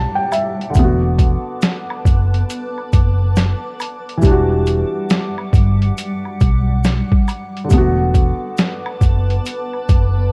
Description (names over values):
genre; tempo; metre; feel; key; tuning
lo-fi hip hop; 69 BPM; 4/4; swing 64% on 16ths; E minor; A4 = 441 Hz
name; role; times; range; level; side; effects
felt-muted upright piano; accompaniment; 0.0-10.3 s; D3 to A5; -23 LUFS; equal; cassette tape, low-pass filter
granular cloud pad; sustained chords; 0.0-10.3 s; G3 to D6; -28 LUFS; equal; built-in reverb, low-pass filter
vintage muted fingered electric bass; bass; 0.0-10.3 s; E1 to B1; -18 LUFS; equal; none
lo-fi sampler-style drum kit; drums; 0.3-10.1 s; hi-hat, kick drum, snare drum; -17 LUFS; equal; overdrive
maracas and woodblock; percussion; 0.3-10.1 s; none; -34 LUFS; equal; none
room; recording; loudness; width
little or no reverb; dark, warm production; -16 LUFS; mono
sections
0.0-10.3 A section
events
felt piano fill 0.0-0.8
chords
0.0 Em9; 0.8 Bm7/E; 4.2 Em9; 7.7 Bm7/E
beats
| 0.76 1.63 2.50 3.37 | 4.24 5.10 5.97 6.84 | 7.71 8.58 9.45